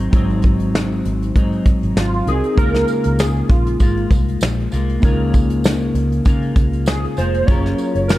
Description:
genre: indie pop, bedroom pop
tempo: 98 BPM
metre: 4/4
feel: swing 55% on 16ths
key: unclear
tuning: A4 = 440 Hz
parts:
  - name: clean electric guitar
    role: accompaniment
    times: 0.0-8.2 s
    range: Ab2 to Bb4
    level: -22 LUFS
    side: left 2 dB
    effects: lush chorus, vibrato effect
  - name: tine electric piano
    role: accompaniment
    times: 0.0-8.2 s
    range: Gb3 to C5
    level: -26 LUFS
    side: right 3 dB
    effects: none
  - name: vintage muted fingered electric bass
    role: bass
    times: 0.0-8.2 s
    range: F1 to Db3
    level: -20 LUFS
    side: equal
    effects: none
  - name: soft brush drum kit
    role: drums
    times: 0.1-8.2 s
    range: hi-hat, kick drum, snare drum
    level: -16 LUFS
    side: equal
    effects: none
  - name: warbly lo-fi synth keys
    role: melody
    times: 2.0-8.2 s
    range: F4 to Db5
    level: -22 LUFS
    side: right 2 dB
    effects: ensemble chorus
  - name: tambourine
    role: percussion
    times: 2.9-8.2 s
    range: none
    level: -38 LUFS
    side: right 8 dB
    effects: none
room: light reverb, small room ambience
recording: dark, warm production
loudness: -14 LUFS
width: side -16 dB against mid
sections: 0.0-8.2 A section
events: none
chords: 0.0 Ab7; 2.6 Db6; 7.5 Gbmaj7

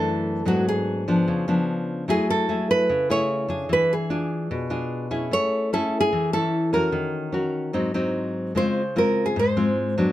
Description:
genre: bossa nova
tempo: 148 BPM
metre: 4/4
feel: straight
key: A major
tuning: A4 = 441 Hz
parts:
  - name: nylon-string guitar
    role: melody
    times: 0.0-10.1 s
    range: F#4 to C#5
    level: -24 LUFS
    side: right 1 dB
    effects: none
  - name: nylon-string guitar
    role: accompaniment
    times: 0.0-10.1 s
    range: F#2 to Bb4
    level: -23 LUFS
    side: left 1 dB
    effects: none
room: light reverb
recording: close, detailed microphones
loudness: -21 LUFS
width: side -14 dB against mid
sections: 0.0-5.3 A section; 5.3-10.1 B section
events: none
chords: 0.5 G#m7b5; 1.3 C#7b9; 2.1 F#m9; 3.7 E7b9; 5.3 Amaj7; 6.9 D#m7; 7.7 G#7; 8.6 C#maj7

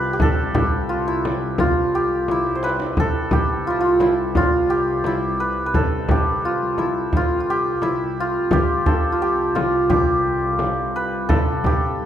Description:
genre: Persian modal ensemble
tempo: 87 BPM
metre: 4/4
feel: straight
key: C dastgah mahur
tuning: A4 = 440 Hz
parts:
  - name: santur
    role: melody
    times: 0.0-12.1 s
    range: D4 to C5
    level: -20 LUFS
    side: equal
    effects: none
  - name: muted studio cello section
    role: drone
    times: 0.0-12.1 s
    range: C2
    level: -29 LUFS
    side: equal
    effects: none
  - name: frame drum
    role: percussion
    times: 0.2-11.8 s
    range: none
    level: -24 LUFS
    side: left 2 dB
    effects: none
  - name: tombak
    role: percussion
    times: 0.2-12.1 s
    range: none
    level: -24 LUFS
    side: right 1 dB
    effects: none
room: moderate scoring stage reverb, RT60 1.8 s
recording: minimal, uncompressed stereo recording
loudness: -18 LUFS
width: side -10 dB against mid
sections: 0.0-12.1 A section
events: drum fill 2.3-3.0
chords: none

